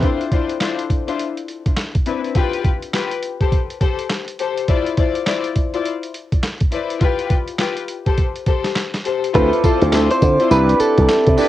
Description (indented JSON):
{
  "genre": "R&B, new jack swing",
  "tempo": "103 BPM",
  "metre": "4/4",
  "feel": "swing 61% on 16ths",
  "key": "D dorian",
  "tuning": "A4 = 439 Hz",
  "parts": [
    { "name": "clear concert grand piano", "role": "accompaniment", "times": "0.0, 9.3-11.5 s", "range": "C4 to D5", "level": "-21 LUFS", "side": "right 8 dB", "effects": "cassette tape" },
    { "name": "warm studio string section", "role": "stabs", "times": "0.0-11.5 s", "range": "C4 to D5", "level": "-22 LUFS", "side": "left 7 dB", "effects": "cassette tape, analog delay" },
    { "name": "boom bap sampler-style drum kit", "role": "drums", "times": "0.0-11.5 s", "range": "handclaps, hi-hat, kick drum, snare drum, tambourine", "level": "-19 LUFS", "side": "equal", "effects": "cassette tape" },
    { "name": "direct-recorded clean electric guitar", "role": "melody", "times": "9.3-11.5 s", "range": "A4 to C5", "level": "-17 LUFS", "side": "equal", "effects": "cassette tape" },
    { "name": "glass harmonica", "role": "sustained chords", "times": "9.3-11.5 s", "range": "C4 to D6", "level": "-27 LUFS", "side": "equal", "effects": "cassette tape" },
    { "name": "slap bass with an envelope filter", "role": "bass", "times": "9.3-11.4 s", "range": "C2 to D3", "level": "-16 LUFS", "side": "equal", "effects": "none" }
  ],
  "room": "light reverb",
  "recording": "home recording on cassette",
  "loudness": "-16 LUFS",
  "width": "side -14 dB against mid",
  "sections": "0.0-9.3 A section; 9.3-11.5 B section",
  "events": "none",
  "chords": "0.0 Dm9; 1.2 Cmaj9; 2.4 G7; 3.2 Am7; 4.7 Dm9; 5.8 Cmaj9; 7.0 G7; 7.9 Am7; 9.3 Dm9; 10.5 Cmaj9",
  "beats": "| 0.02 0.61 1.19 1.77 | 2.35 2.94 3.52 4.10 | 4.68 5.27 5.85 6.43 | 7.01 7.60 8.18 8.76 | 9.35 9.93 10.51 11.09"
}